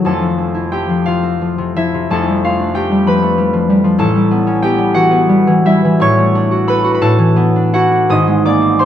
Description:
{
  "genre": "classical, solo harp piece",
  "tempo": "53-65 BPM (dotted quarters)",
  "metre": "6/8",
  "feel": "rubato",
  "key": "unclear",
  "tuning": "A4 = 440 Hz",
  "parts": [
    { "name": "concert harp", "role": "solo", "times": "0.0-8.8 s", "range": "F1 to D#6", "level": "-11 LUFS", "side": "equal", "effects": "none" }
  ],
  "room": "light reverb",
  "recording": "dark, warm production",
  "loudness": "-11 LUFS",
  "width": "side -10 dB against mid",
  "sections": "0.0-8.8 A section",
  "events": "none",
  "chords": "0.1 Fmaj7; 2.1 G9/F; 4.0 A13; 6.0 Dmaj7/A; 7.0 Bm11/A; 8.1 G#add9"
}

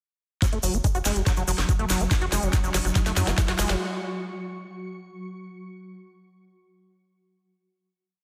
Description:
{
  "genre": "psychedelic trance",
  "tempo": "142 BPM",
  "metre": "4/4",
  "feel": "straight",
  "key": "unclear",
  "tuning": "A4 = 440 Hz",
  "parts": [
    { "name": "swarming drone", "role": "sustained chords", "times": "1.1-3.8 s", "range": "F#3 to F#4", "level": "-37 LUFS", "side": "equal", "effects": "built-in reverb, sidechain pumping" },
    { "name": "overdriven acid bass", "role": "riff", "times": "0.4-3.8 s", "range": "F#3 to F#4", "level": "-33 LUFS", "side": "equal", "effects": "sidechain pumping, tape echo" },
    { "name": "electronic kick drum", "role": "drums", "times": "0.4-3.5 s", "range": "none", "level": "-25 LUFS", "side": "equal", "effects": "none" },
    { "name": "garage drum kit", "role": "drums", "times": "0.4-3.8 s", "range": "hi-hat, snare drum", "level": "-32 LUFS", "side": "equal", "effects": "high-pass filter on snare, high-pass filter on hats" },
    { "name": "tube shaker", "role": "percussion", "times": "0.4-3.8 s", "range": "none", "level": "-36 LUFS", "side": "equal", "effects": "none" },
    { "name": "riser", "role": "sound effects", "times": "2.3-3.8 s", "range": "none", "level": "-42 LUFS", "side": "equal", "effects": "none" },
    { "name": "tight sequencer bass", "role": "bass", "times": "0.5-3.8 s", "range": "F#1 to F#2", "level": "-29 LUFS", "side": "equal", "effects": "none" }
  ],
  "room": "light reverb, digital ambience",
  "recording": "dense, heavily limited modern master",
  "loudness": "-24 LUFS",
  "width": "mono",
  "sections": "0.4-3.8 build",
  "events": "build-up 0.4-3.8; drum fill 0.4-3.8; filter sweep on acid bass 0.4-3.8; riser 2.3-3.8",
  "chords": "0.4 F#5"
}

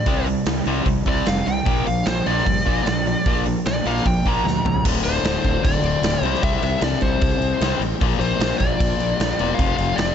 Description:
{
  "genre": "hard rock",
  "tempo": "152 BPM",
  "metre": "4/4",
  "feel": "straight",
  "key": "unclear",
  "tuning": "A4 = 444 Hz",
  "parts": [
    { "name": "biting lead guitar", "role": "melody", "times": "0.0-10.1 s", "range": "C5 to Bb5", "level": "-25 LUFS", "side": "equal", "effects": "overdrive, analog delay" },
    { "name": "cranked stack guitar", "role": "riff", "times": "0.0-4.8 s", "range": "Bb2 to C4", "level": "-25 LUFS", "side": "right 12 dB", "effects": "overdrive" },
    { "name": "overdriven semi-hollow guitar", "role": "riff", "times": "0.0-10.1 s", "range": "D2 to C4", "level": "-24 LUFS", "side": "left 12 dB", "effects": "none" },
    { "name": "fuzz fingered electric bass", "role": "bass", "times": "0.1-10.1 s", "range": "D1 to G2", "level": "-25 LUFS", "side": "right 1 dB", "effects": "overdrive" },
    { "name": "huge arena drum kit", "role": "drums", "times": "0.1-10.1 s", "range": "crash cymbal, hi-hat, kick drum, snare drum, toms", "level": "-23 LUFS", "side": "right 1 dB", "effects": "none" }
  ],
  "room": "small room ambience",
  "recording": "nothing above 7.9 kHz",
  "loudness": "-18 LUFS",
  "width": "side -8 dB against mid",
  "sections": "0.0-4.9 A section; 4.9-10.1 B section",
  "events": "lead electric guitar solo 0.0-4.9; drum fill 4.5-4.9",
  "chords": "0.1 C5; 1.7 Bb; 4.9 D5; 6.2 C5; 8.0 Bb; 9.6 F5"
}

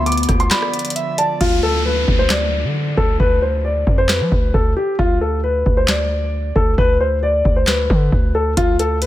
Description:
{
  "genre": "hip hop, trap",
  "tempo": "134 BPM",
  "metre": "4/4",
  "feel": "half-time",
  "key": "D dorian",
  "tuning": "A4 = 441 Hz",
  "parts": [
    { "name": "breathy flute-like synth lead", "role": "second line", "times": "0.0-1.4 s", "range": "D5 to E5", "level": "-26 LUFS", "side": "right 3 dB", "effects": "chorus, ping-pong delay" },
    { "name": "felt-muted upright piano", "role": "accompaniment", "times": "0.0-1.4 s", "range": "none", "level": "barely audible", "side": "none", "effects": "none" },
    { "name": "hollow soft pad", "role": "sustained chords", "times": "0.0-1.4 s", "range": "D3 to F4", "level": "-26 LUFS", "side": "left 4 dB", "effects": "chorus" },
    { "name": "hard-hitting 808-style bass", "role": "bass", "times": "0.0-9.1 s", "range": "D2 to F3", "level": "-19 LUFS", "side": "equal", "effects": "none" },
    { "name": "dark concert grand piano", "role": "melody", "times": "0.1-9.1 s", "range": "F4 to D6", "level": "-19 LUFS", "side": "left 1 dB", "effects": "ping-pong delay" },
    { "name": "booming analog drum machine", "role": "drums", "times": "0.1-9.1 s", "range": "crash cymbal, handclaps, hi-hat, kick drum, rim click, snare drum", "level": "-18 LUFS", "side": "equal", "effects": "none" },
    { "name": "downlifter", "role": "sound effects", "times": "1.4-5.0 s", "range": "none", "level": "-27 LUFS", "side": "equal", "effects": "none" }
  ],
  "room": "digital ambience",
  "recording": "none",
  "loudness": "-14 LUFS",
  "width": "side -14 dB against mid",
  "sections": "0.0-1.4 A section; 1.4-9.1 B section",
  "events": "break 0.5-1.4; hi-hats muted 1.4-8.6",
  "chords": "0.0 Dm; 5.0 D5"
}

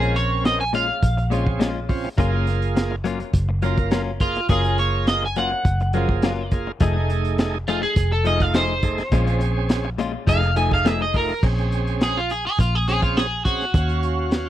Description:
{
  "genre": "straight-eighth soul blues",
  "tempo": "104 BPM",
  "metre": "4/4",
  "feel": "straight",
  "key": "Bb minor",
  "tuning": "A4 = 439 Hz",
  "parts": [
    { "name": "electric guitar at the edge of break-up", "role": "melody", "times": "0.0-14.5 s", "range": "F4 to Ab5", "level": "-23 LUFS", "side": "equal", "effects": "lush chorus" },
    { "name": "bright tonewheel organ", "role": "accompaniment", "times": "0.0-14.5 s", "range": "F3 to F5", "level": "-27 LUFS", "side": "right 5 dB", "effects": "slow rotary speaker, overdrive" },
    { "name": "direct-recorded clean electric guitar", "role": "stabs", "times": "0.0-11.3 s", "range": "Bb2 to G#4", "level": "-28 LUFS", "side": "left 6 dB", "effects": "spring reverb, slapback echo" },
    { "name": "vintage muted fingered electric bass", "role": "bass", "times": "0.0-14.5 s", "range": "F1 to Eb2", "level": "-23 LUFS", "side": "equal", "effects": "none" },
    { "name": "crunchy breakbeat drum kit", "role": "drums", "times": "0.0-14.5 s", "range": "crash cymbal, hi-hat, kick drum, snare drum", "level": "-22 LUFS", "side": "equal", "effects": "none" }
  ],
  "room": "little or no reverb",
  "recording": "dry, close 1970s-style studio recording",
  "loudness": "-18 LUFS",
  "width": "side -12 dB against mid",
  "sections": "0.0-11.4 A section; 11.4-14.5 A section",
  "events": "clean electric guitar solo 0.0-11.4, 11.4-14.5",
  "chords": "0.0 Bbm7; 2.2 Gbmaj7; 6.8 F7#9; 9.1 Bbm7; 10.3 F7#9; 11.4 Bbm7; 13.7 Ebm7"
}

